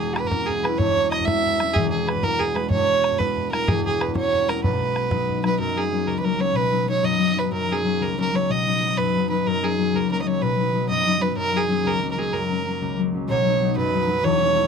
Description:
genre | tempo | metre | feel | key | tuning
celtic folk, Celtic jig | 125 BPM (dotted quarters) | 6/8 | straight | F# major from 5.6 s | A4 = 439 Hz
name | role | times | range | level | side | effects
warm fiddle | melody | 0.0-14.7 s | G#4 to E5 | -22 LUFS | right 4 dB | none
concert harp | accompaniment | 0.0-14.7 s | E1 to E4 | -23 LUFS | left 4 dB | none
bodhran | percussion | 0.0-5.5 s | none | -26 LUFS | equal | none
room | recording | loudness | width
moderate studio reverb, RT60 0.5 s | close, detailed microphones | -19 LUFS | side -6 dB against mid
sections
0.0-5.6 A section; 5.6-13.3 B section; 13.3-14.7 C section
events
none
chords
0.0 C#m/E; 4.6 B; 5.6 F#; 6.6 B; 7.5 F#; 8.5 B; 9.5 F#; 10.4 B; 11.4 F#; 13.3 B

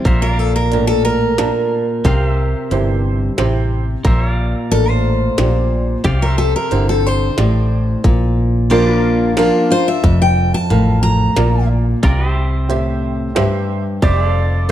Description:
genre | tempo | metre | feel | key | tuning
honky-tonk and classic country | 90 BPM | 3/4 | straight | unclear | A4 = 441 Hz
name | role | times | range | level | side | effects
picked steel-string acoustic guitar | melody | 0.0-11.7 s | A4 to Bb5 | -19 LUFS | left 1 dB | none
picked steel-string acoustic guitar | accompaniment | 0.0-14.7 s | F2 to F4 | -18 LUFS | left 1 dB | none
pedal steel guitar | sustained chords | 0.0-14.7 s | F4 to F5 | -27 LUFS | right 2 dB | none
vintage muted fingered electric bass | bass | 0.1-14.7 s | F1 to C2 | -17 LUFS | equal | none
glitchy drum kit | drums | 0.1-14.7 s | hi-hat, kick drum, ride cymbal, snare drum | -17 LUFS | equal | none
dark grand piano | accompaniment | 0.7-14.7 s | D4 to A5 | -23 LUFS | right 6 dB | none
pedal steel guitar | second line | 14.0-14.7 s | D5 | -19 LUFS | right 4 dB | none
room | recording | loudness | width
moderate recital hall reverb, RT60 1.6 s | dark, warm production | -13 LUFS | side -12 dB against mid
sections
0.0-14.0 A section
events
steel-string acoustic guitar solo 0.0-14.0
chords
0.1 Bb; 2.1 C; 4.1 Bb; 6.0 C; 8.0 Bb; 12.0 C; 14.0 F

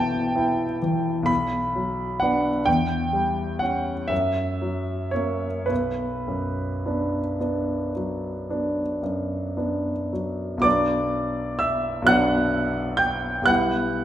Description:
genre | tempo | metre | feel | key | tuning
classical, romantic nocturne for solo piano | 34-44 BPM (dotted quarters) | 9/8 | rubato | B minor | A4 = 440 Hz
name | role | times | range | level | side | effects
clear grand piano | solo | 0.0-14.0 s | B1 to G6 | -22 LUFS | equal | none
room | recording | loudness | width
wet recital hall reverb, RT60 1.7 s | none | -22 LUFS | side -11 dB against mid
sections
0.0-10.7 A section; 10.7-14.0 B section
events
none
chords
0.0 Em/B; 1.3 Bm; 2.7 C#dim/E; 4.1 F#7; 5.7 Bm; 13.5 Em/B

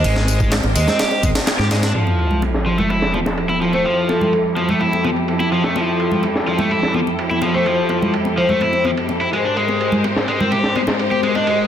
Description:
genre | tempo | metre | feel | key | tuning
breakbeat, breaks | 126 BPM | 4/4 | straight | unclear | A4 = 441 Hz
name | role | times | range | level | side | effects
vibraphone with medium hard mallets | melody | 0.0-4.3, 7.5-11.6 s | A4 to Eb5 | -22 LUFS | equal | old record sound, ping-pong delay
bright studio string section | sustained chords | 0.0-11.7 s | F2 to C5 | -22 LUFS | equal | vintage 12-bit sampler grit, sidechain pumping, low-pass filter
crunchy overdriven guitar | riff | 0.0-11.7 s | F3 to G4 | -20 LUFS | left 1 dB | tube saturation, low-pass filter, ping-pong delay
fingered electric bass | bass | 0.0-1.9 s | Ab1 to Ab2 | -18 LUFS | equal | none
breakbeat sampler-style drum kit | drums | 0.0-11.6 s | kick drum, ride cymbal, snare drum | -24 LUFS | right 1 dB | low-pass filter on kick, studio reverb, low-pass filter on cymbals, low-pass filter on snare
electronic tambourine and handclaps | drums | 0.0-1.9 s | none | -28 LUFS | left 2 dB | low-pass filter on perc, studio reverb, low-pass filter on snare
congas | percussion | 0.2-11.4 s | none | -24 LUFS | left 1 dB | none
sub drop | sound effects | 1.9-3.9 s | none | -22 LUFS | equal | none
room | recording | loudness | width
moderate digital room reverb, RT60 1.3 s, digital ambience | dense, heavily limited modern master | -15 LUFS | side -9 dB against mid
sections
0.0-1.9 A section; 1.9-11.7 B section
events
band accent 1.5; impact 1.9-3.9; filter sweep on string section 1.9-11.7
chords
0.0 Abmaj9; 1.9 Fmaj9; 9.3 Abmaj9

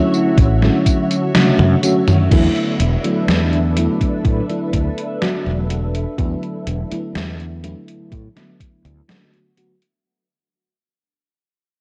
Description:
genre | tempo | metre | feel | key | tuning
vaporwave | 62 BPM | 4/4 | straight | unclear | A4 = 440 Hz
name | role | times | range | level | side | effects
FM electric piano with soft pad layer | accompaniment | 0.0-9.7 s | D3 to F#4 | -22 LUFS | equal | tremolo, subtle chorus, tape echo
soft string machine | sustained chords | 0.0-10.0 s | D3 to E5 | -28 LUFS | equal | phaser, ensemble chorus
gated 80s digital drum machine | drums | 0.1-10.0 s | crash cymbal, hi-hat, snare drum, tambourine, toms | -21 LUFS | equal | gated reverb, gated reverb snare, overdrive
fretless electric bass | bass | 0.4-9.0 s | E1 to A2 | -21 LUFS | equal | none
electronic kick drum | drums | 0.4-8.8 s | none | -19 LUFS | equal | overdrive
room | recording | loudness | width
little or no reverb | dry, gritty hardware recording, cassette tape | -17 LUFS | mono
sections
0.0-2.3 A section; 2.3-10.1 B section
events
kick drops out 1.3-2.3; drum fill 1.3-2.3; fade-out 2.3-10.1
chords
0.0 Dmaj9; 2.3 E7sus4

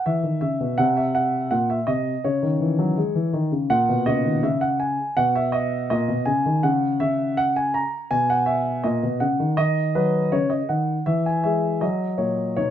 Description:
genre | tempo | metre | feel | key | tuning
classical-period piano sonatina | 82 BPM | 4/4 | straight | B major | A4 = 441 Hz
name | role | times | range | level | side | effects
warm concert grand piano | solo | 0.0-12.7 s | A#2 to A#5 | -20 LUFS | equal | none
room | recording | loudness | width
light reverb | minimal, uncompressed stereo recording | -20 LUFS | side -10 dB against mid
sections
0.0-12.7 A section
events
none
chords
0.0 C#m; 0.8 D#m6; 2.2 C#m; 3.7 B69; 6.6 N.C.; 8.1 B; 9.6 C#9sus4; 11.1 E; 11.8 F#

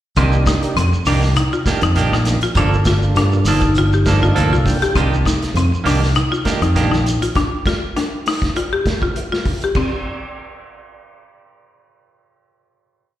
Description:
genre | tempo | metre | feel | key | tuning
afrobeat | 100 BPM | 4/4 | swing 54% on 16ths | C dorian | A4 = 440 Hz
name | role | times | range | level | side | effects
combo organ | accompaniment | 0.2-4.9 s | Bb3 to G5 | -25 LUFS | right 2 dB | slapback echo
marimba with hard mallets | arpeggios | 0.2-9.8 s | C4 to G4 | -20 LUFS | left 3 dB | slapback echo
clean electric guitar | stabs | 0.2-7.3 s | Eb3 to A4 | -22 LUFS | right 5 dB | slapback echo
fingered electric bass | bass | 0.2-7.2 s | G1 to G2 | -16 LUFS | equal | none
vintage drum kit | drums | 0.2-9.9 s | crash cymbal, hi-hat, kick drum, snare drum | -22 LUFS | equal | none
shekere | percussion | 0.2-7.4 s | none | -28 LUFS | right 2 dB | none
room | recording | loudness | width
light reverb | live gig heard through the venue's PA, recital hall reverb | -14 LUFS | side -13 dB against mid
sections
0.2-9.8 groove; 9.8-12.1 final chord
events
transistor combo organ fill 3.8-5.0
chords
0.2 Cm9; 2.6 Gm9; 5.0 Cm9; 7.4 G5; 9.8 N.C.

